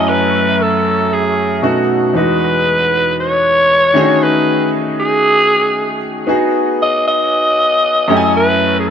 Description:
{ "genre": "pop", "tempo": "116 BPM", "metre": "4/4", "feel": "straight", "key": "E major", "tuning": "A4 = 440 Hz", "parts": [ { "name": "growling alto saxophone", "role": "melody", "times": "0.0-8.9 s", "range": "G#4 to D#5", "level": "-13 LUFS", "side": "equal", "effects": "none" }, { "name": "clear baby grand piano", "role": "accompaniment", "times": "0.0-8.9 s", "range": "E2 to G#5", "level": "-15 LUFS", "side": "equal", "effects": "analog chorus" } ], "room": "moderate lush hall reverb, RT60 2.6 s", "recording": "none", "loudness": "-11 LUFS", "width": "side -8 dB against mid", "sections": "0.0-8.9 A section", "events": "none", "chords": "0.0 F#m9; 1.6 B7; 2.1 Emaj9; 4.0 B13/D#; 6.3 G#m7; 8.1 F#m9" }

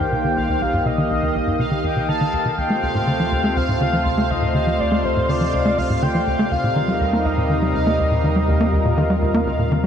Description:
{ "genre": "ambient, sequencer-driven space music", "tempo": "122 BPM", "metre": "4/4", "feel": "straight", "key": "D phrygian", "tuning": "A4 = 440 Hz", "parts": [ { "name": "breathy flute-like synth lead", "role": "melody", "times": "0.0-9.9 s", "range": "C5 to A5", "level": "-23 LUFS", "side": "left 1 dB", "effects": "analog chorus, ping-pong delay" }, { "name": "lush unison pad", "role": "sustained chords", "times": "0.0-9.9 s", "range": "C3 to Eb5", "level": "-23 LUFS", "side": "equal", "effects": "chorus" }, { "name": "tight sequencer bass", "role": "riff", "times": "0.0-9.9 s", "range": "C2 to Bb3", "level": "-22 LUFS", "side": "equal", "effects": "ping-pong delay" }, { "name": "warm sub bass", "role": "bass", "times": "0.0-9.9 s", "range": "C2 to Eb2", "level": "-26 LUFS", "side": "equal", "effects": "none" }, { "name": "bubbling stepped-filter texture", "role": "texture", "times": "0.0-9.9 s", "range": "F5", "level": "-30 LUFS", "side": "equal", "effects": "chorus, built-in reverb" } ], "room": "wet huge ambient reverb, RT60 9.3 s", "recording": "none", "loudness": "-17 LUFS", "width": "side -8 dB against mid", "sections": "0.0-9.9 A section", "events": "fade-in on sub bass 0.0-9.9; filter sweep on analog synth bass 0.0-9.9", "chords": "0.0 Cm7; 2.6 Dm7; 6.5 Eb" }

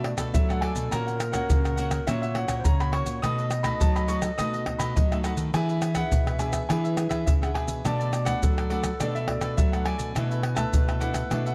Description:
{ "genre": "samba and choro", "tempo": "104 BPM", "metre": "4/4", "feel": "straight", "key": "unclear", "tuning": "A4 = 442 Hz", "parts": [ { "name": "warm concert grand piano", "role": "melody", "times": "0.0-11.5 s", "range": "D5 to D#6", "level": "-35 LUFS", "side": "equal", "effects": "none" }, { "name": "reedy baroque flute", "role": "second line", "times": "0.0-11.5 s", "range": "A4 to E5", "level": "-37 LUFS", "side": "equal", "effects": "none" }, { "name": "cavaquinho", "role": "accompaniment", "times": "0.0-11.5 s", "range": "D4 to F#5", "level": "-40 LUFS", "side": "equal", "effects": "none" }, { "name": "nylon-string guitar", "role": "accompaniment", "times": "0.0-11.5 s", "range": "A#2 to G#4", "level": "-38 LUFS", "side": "equal", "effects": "none" }, { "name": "nylon-string guitar", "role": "bass", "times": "0.0-11.5 s", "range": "A#2 to F#3", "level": "-32 LUFS", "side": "equal", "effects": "none" }, { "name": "pandeiro, tamborim, maracas and surdo", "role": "percussion", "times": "0.0-11.5 s", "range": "none", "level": "-28 LUFS", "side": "equal", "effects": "none" } ], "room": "moderate large studio reverb, RT60 1.5 s", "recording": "close, detailed microphones", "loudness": "-26 LUFS", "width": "mono", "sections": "0.0-11.5 A section", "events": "none", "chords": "0.0 Bm7; 0.9 F#/A#; 3.2 B7; 5.5 E7; 7.8 Bm7; 10.2 E7sus4/B" }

